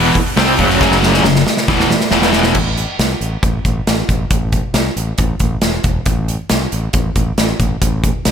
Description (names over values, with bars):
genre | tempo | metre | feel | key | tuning
hard rock | 137 BPM | 4/4 | straight | unclear | A4 = 439 Hz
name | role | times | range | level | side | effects
overdriven electric guitar | riff | 0.0-2.6 s | E2 to C4 | -17 LUFS | left 10 dB | none
raw garage guitar | riff | 0.0-2.6 s | E2 to C4 | -18 LUFS | equal | overdrive, tremolo, slapback echo
sludgy distorted guitar | riff | 0.0-2.6 s | E2 to C4 | -18 LUFS | right 9 dB | overdrive
growling fingered electric bass | bass | 0.0-8.3 s | E1 to C2 | -19 LUFS | equal | overdrive
big rock drum kit | drums | 0.2-8.3 s | crash cymbal, hi-hat, kick drum, snare drum | -16 LUFS | equal | none
room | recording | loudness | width
light reverb, small room ambience | none | -12 LUFS | side -8 dB against mid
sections
0.0-2.6 A section; 2.6-8.3 B section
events
drum fill 0.8-2.6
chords
0.0 F#5; 2.1 E5; 2.6 N.C.